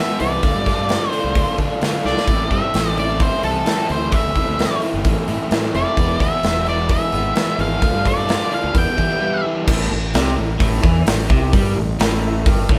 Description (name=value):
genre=blues rock power trio and southern rock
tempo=130 BPM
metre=4/4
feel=straight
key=A minor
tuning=A4 = 440 Hz
part: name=octave-fuzz lead guitar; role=melody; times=0.0-9.4 s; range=A4 to G5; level=-25 LUFS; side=equal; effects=distortion
part: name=crunchy overdriven guitar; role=riff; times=0.0-12.8 s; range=G2 to F4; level=-24 LUFS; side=equal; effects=none
part: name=fuzz fingered electric bass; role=bass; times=0.2-12.8 s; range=E1 to E3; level=-25 LUFS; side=equal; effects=overdrive
part: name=big rock drum kit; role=drums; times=0.2-12.8 s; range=crash cymbal, hi-hat, kick drum, snare drum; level=-22 LUFS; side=equal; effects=none
room=moderate studio reverb, RT60 0.7 s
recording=band playing live in one room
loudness=-18 LUFS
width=mono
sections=0.0-9.7 A section; 9.7-12.8 B section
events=drum fill 2.0; break 9.2-9.7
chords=0.4 Dm; 2.3 Am; 6.0 E; 7.8 Dm; 8.8 Em; 9.7 Am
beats=| 0.44 0.90 1.36 1.82 | 2.28 2.74 3.20 3.66 | 4.13 4.59 5.05 5.51 | 5.98 6.44 6.90 7.37 | 7.83 8.29 8.76 9.22 | 9.68 10.15 10.61 11.07 | 11.54 12.00 12.46